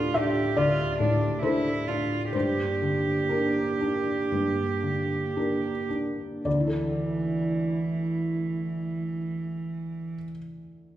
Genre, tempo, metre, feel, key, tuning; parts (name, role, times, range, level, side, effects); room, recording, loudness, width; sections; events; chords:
neoclassical piano and strings; 54-72 BPM; 4/4; rubato; A4 = 440 Hz
rich cello; second line; 0.0-10.2 s; E3 to G4; -29 LUFS; right 3 dB
felt-muted upright piano; accompaniment; 0.0-11.0 s; D2 to F5; -27 LUFS; left 1 dB
warbly tape-like pad; sustained chords; 0.0-10.2 s; A3 to E5; -34 LUFS; right 1 dB; chorus, built-in reverb
wet recital hall reverb, RT60 1.6 s; heard from further back in the room; -25 LUFS; side -12 dB against mid
0.0-6.5 A section; 6.5-10.8 B section
slowing down 0.0-6.5
0.0 Dmadd9; 2.3 Gm; 6.5 Dsus2